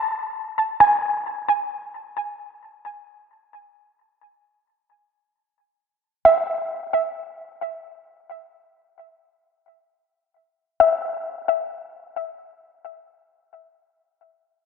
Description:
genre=ambient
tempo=free time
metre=none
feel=none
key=E mixolydian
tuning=A4 = 440 Hz
part: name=soft round pluck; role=solo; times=0.0-13.9 s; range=E5 to D6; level=-19 LUFS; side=equal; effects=analog chorus, tape echo
room=wet spring reverb, RT60 2.5 s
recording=echo-heavy mix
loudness=-20 LUFS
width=side -6 dB against mid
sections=0.0-10.8 A section; 10.8-13.5 B section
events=none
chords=none

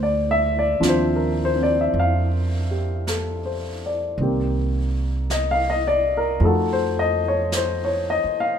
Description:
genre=jazz ballad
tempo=54 BPM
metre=4/4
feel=swing 66% on 8ths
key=unclear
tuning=A4 = 439 Hz
part: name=warm upright piano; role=accompaniment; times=0.0-8.6 s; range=Eb3 to F5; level=-21 LUFS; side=left 2 dB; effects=none
part: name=upright bass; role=bass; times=0.0-8.3 s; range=C2 to F2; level=-24 LUFS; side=right 2 dB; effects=none
part: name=jazz brush drum kit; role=drums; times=0.8-8.6 s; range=brushed snare drum, hi-hat, snare drum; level=-33 LUFS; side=right 2 dB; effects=none
room=light reverb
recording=minimal, uncompressed stereo recording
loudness=-19 LUFS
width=side -8 dB against mid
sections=0.0-8.6 A section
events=none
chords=0.0 Dm7; 4.2 Cm7; 6.4 F7b9

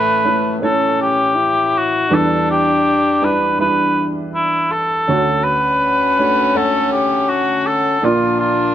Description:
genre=acoustic folk-pop ballad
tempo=81 BPM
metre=4/4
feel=straight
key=D major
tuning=A4 = 442 Hz
part: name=warm cor anglais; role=melody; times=0.0-8.7 s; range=E4 to B4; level=-16 LUFS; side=equal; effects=plate reverb
part: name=clear French horn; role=second line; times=0.0-8.7 s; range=A3 to E4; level=-20 LUFS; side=left 5 dB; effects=none
part: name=warm upright piano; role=accompaniment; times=0.0-8.7 s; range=A1 to F#5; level=-20 LUFS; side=right 3 dB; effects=none
part: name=warm chamber string section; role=sustained chords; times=5.1-8.7 s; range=D3 to F#5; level=-28 LUFS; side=right 2 dB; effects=none
room=light reverb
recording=none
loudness=-14 LUFS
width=side -10 dB against mid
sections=0.0-8.7 A section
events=none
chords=0.0 A; 2.1 Em7; 5.1 Dmaj7; 8.0 Bb

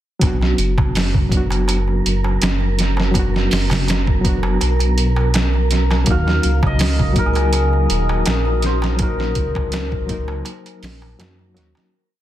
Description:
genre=trip hop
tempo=82 BPM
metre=4/4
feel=straight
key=unclear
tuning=A4 = 440 Hz
part: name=barky reed electric piano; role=accompaniment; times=0.2-12.0 s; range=F#3 to A#4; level=-24 LUFS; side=left 1 dB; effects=overdrive, fast tremolo, tape echo
part: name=dark detuned saw bass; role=bass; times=0.2-11.7 s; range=D#1 to F#2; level=-19 LUFS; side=equal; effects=none
part: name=trip hop sampler-style drum kit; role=drums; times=0.2-11.9 s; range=hi-hat, kick drum, snare drum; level=-20 LUFS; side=right 1 dB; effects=overdrive
part: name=darbuka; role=percussion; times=0.2-11.9 s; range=none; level=-28 LUFS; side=right 1 dB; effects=none
part: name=wind-like tuned noise texture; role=texture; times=1.2-11.9 s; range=A#4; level=-29 LUFS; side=right 5 dB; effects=built-in reverb
part: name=cimbalom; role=melody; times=6.1-11.8 s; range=G#4 to E#5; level=-24 LUFS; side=left 2 dB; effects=vintage 12-bit sampler grit, tape echo
part: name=deep dark ambient pad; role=sustained chords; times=7.4-11.9 s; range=F#4 to D#6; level=-30 LUFS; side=left 4 dB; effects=chorus, built-in reverb
room=digital ambience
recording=dense, heavily limited modern master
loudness=-15 LUFS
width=side -12 dB against mid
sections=0.2-11.9 groove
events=fade-out 8.0-11.9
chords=0.2 Bm; 6.1 D#m

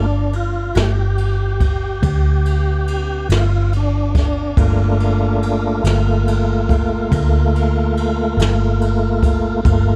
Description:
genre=slow blues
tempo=47 BPM (dotted quarters)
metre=12/8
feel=straight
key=G minor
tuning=A4 = 435 Hz
part: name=tonewheel organ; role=sustained chords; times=0.0-10.0 s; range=A3 to G4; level=-23 LUFS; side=equal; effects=slow rotary speaker, overdrive, chorus vibrato
part: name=vintage muted fingered electric bass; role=bass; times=0.0-10.0 s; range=G1 to D2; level=-19 LUFS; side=equal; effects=none
part: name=jazz brush drum kit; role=drums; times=0.3-9.8 s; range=kick drum, ride cymbal, snare drum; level=-24 LUFS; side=equal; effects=none
room=small room ambience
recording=none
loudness=-17 LUFS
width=mono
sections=0.0-10.0 A section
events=tonewheel organ solo 0.0-10.0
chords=0.0 Gm7

